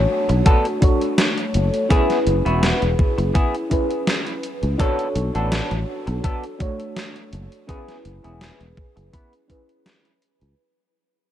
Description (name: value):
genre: vaporwave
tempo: 83 BPM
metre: 4/4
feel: swing 54% on 16ths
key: unclear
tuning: A4 = 440 Hz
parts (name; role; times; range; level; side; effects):
- mellow FM electric piano; accompaniment; 0.0-10.6 s; A3 to C#5; -24 LUFS; equal; tremolo, wide subtle chorus, analog delay
- sustaining fretless electric bass; bass; 0.0-10.5 s; E1 to C#2; -21 LUFS; equal; analog chorus
- semi-hollow electric guitar; riff; 0.3-10.1 s; B3 to B4; -26 LUFS; left 1 dB; wide subtle chorus, low-pass filter, analog delay
- gated 80s digital drum machine; drums; 0.3-10.5 s; hi-hat, snare drum; -24 LUFS; equal; gated reverb, gated reverb snare
- electronic kick drum; drums; 0.5-9.7 s; none; -18 LUFS; equal; none
room: light reverb, digital ambience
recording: none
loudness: -18 LUFS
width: side -11 dB against mid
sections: 0.0-10.6 A section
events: fade-out 0.0-10.6; filter sweep on clean electric guitar 0.0-10.6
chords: 0.0 Bm7; 1.9 F#9sus4; 4.8 Bm7; 7.7 F#9sus4 (rootless)